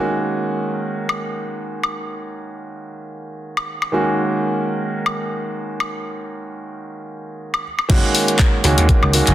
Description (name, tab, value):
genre	nu-disco, nu disco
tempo	121 BPM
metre	4/4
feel	swing 56% on 16ths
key	F# major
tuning	A4 = 440 Hz
part	clear concert grand piano	accompaniment	0.0-9.3 s	D#3 to F#4	-22 LUFS	right 1 dB	tape echo
part	house drum kit	drums	1.1-9.3 s	crash cymbal, handclaps, hi-hat, woodblock	-22 LUFS	left 2 dB	none
part	vintage slap bass	bass	7.9-9.3 s	F#1 to D#2	-17 LUFS	equal	none
part	electronic kick drum	drums	7.9-9.0 s	none	-15 LUFS	equal	none
room	moderate echo chamber reverb, RT60 1.6 s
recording	dense, heavily limited modern master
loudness	-17 LUFS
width	side -13 dB against mid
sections	0.0-7.9 A section; 7.9-9.3 B section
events	drop 7.9-9.3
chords	0.0 F#69; 7.6 N.C.; 7.9 F#69